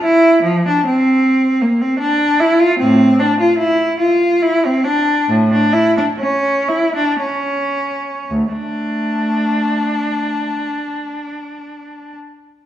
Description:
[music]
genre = classical, baroque-style suite movement for unaccompanied cello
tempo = 52-78 BPM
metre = 3/4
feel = rubato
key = D minor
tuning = A4 = 441 Hz
[part]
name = rich cello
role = solo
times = 0.0-12.2 s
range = D2 to F4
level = -13 LUFS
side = equal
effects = none
[sound]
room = wet stone room reverb, RT60 1.3 s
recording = heard from further back in the room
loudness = -13 LUFS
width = side -11 dB against mid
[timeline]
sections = 0.0-8.3 A section; 8.3-11.4 B section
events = slowing down 1.6-8.3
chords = none

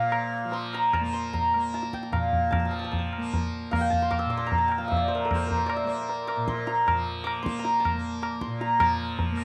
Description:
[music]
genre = indian classical, Hindustani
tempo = 152 BPM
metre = 4/4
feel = straight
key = Bb raga yaman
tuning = A4 = 439 Hz
[part]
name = santur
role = melody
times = 0.0-9.4 s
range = A4 to E6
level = -29 LUFS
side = equal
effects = none
[part]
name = tanpura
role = drone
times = 0.0-9.4 s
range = Bb2 to Bb3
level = -35 LUFS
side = equal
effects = none
[part]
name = tabla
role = percussion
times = 0.1-9.4 s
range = none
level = -32 LUFS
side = equal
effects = none
[sound]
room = moderate echo chamber reverb, RT60 1.8 s, small room ambience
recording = none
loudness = -27 LUFS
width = mono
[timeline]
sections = 0.0-8.8 A section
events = speeding up 0.0-9.4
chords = none

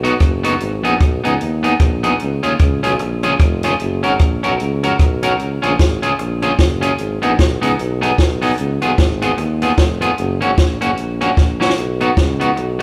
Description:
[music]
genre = ska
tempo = 150 BPM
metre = 4/4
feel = swing 59% on 8ths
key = unclear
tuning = A4 = 442 Hz
[part]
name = electric guitar at the edge of break-up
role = accompaniment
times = 0.0-12.8 s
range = A#3 to A#4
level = -20 LUFS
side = equal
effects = none
[part]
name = warm tuba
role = bass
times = 0.0-12.8 s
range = E#1 to D#2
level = -23 LUFS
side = equal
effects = none
[part]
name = compact cocktail drum kit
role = drums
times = 0.0-12.8 s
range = hi-hat, kick drum, rim click, snare drum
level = -18 LUFS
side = equal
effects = none
[sound]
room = moderate large studio reverb, RT60 1.2 s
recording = band playing live in one room, cassette tape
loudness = -16 LUFS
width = mono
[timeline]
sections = 0.0-11.8 A section; 11.8-12.8 B section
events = drum fill 11.4-11.8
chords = 0.0 B; 0.6 G#m; 2.2 C#; 3.8 F#; 5.4 C#; 7.0 G#m; 8.6 C#7; 10.2 F#; 11.8 B

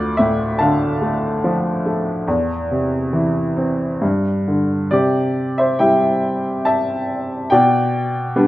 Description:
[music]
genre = classical, lyrical solo piano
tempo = 70 BPM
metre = 3/4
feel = rubato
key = C major from 4.9 s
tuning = A4 = 440 Hz
[part]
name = clear upright piano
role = solo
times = 0.0-8.5 s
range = D2 to A5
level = -16 LUFS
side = equal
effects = none
[sound]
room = moderate recital hall reverb, RT60 1.6 s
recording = minimal, uncompressed stereo recording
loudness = -16 LUFS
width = side -16 dB against mid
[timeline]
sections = 0.0-4.9 A section; 4.9-8.5 B section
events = none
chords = 0.0 Dm; 2.3 Am/E; 4.0 G5; 4.9 C; 7.5 G/B

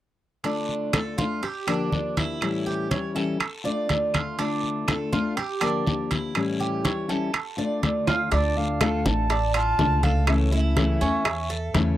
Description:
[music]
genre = latin, Cuban son and guajira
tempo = 122 BPM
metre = 4/4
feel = straight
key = D harmonic minor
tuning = A4 = 440 Hz
[part]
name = fingerpicked steel-string acoustic guitar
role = accompaniment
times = 0.4-12.0 s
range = A2 to G4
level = -27 LUFS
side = left 4 dB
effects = none
[part]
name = Cuban tres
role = arpeggios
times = 0.4-12.0 s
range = C#4 to D5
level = -29 LUFS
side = right 4 dB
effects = none
[part]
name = congas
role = percussion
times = 0.4-12.0 s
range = none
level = -29 LUFS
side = left 1 dB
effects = none
[part]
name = guiro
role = percussion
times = 0.4-12.0 s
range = none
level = -36 LUFS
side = left 4 dB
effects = none
[part]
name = timbales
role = percussion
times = 0.4-12.0 s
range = none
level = -29 LUFS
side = right 6 dB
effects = none
[part]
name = claves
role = percussion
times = 0.9-11.5 s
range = none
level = -34 LUFS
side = left 5 dB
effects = none
[part]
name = silver concert flute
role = melody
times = 8.3-12.0 s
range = D5 to A5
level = -28 LUFS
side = right 2 dB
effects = tape echo
[part]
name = upright bass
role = bass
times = 8.3-12.0 s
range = A1 to E2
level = -24 LUFS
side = equal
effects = none
[part]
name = bongos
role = percussion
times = 8.3-12.0 s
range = none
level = -31 LUFS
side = left 5 dB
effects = none
[sound]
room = light reverb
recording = dry, close 1970s-style studio recording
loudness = -22 LUFS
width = side -13 dB against mid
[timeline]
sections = 0.4-8.3 A section; 8.3-12.0 B section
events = drum fill 8.1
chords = 0.4 Dm; 1.4 Gm7; 2.4 A7; 3.4 Dm; 5.4 Gm7; 6.4 A7; 7.3 Dm; 10.3 A/C#

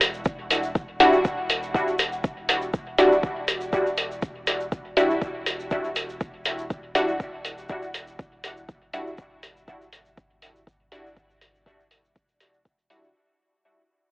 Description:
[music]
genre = dub techno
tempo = 121 BPM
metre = 4/4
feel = swing 53% on 16ths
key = E minor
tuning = A4 = 440 Hz
[part]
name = warm sub bass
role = bass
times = 0.0-13.1 s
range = E1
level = -48 LUFS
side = equal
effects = sidechain pumping
[part]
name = electronic hi-hat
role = drums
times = 0.0-13.0 s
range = none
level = -24 LUFS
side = equal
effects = none
[part]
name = egg shaker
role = percussion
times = 0.0-13.1 s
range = none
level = -45 LUFS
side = equal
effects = none
[part]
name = electronic kick drum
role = drums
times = 0.3-12.8 s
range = none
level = -27 LUFS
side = equal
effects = none
[part]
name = filtered dub chord stab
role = stabs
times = 1.0-13.1 s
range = G3 to F#4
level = -22 LUFS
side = equal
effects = chorus, phaser, sidechain pumping, dub echo
[sound]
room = moderate huge ambient reverb, RT60 4.5 s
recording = AM radio sound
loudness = -22 LUFS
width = side -25 dB against mid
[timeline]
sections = 0.0-13.1 A section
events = fade-out 0.0-13.1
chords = 0.0 Em9

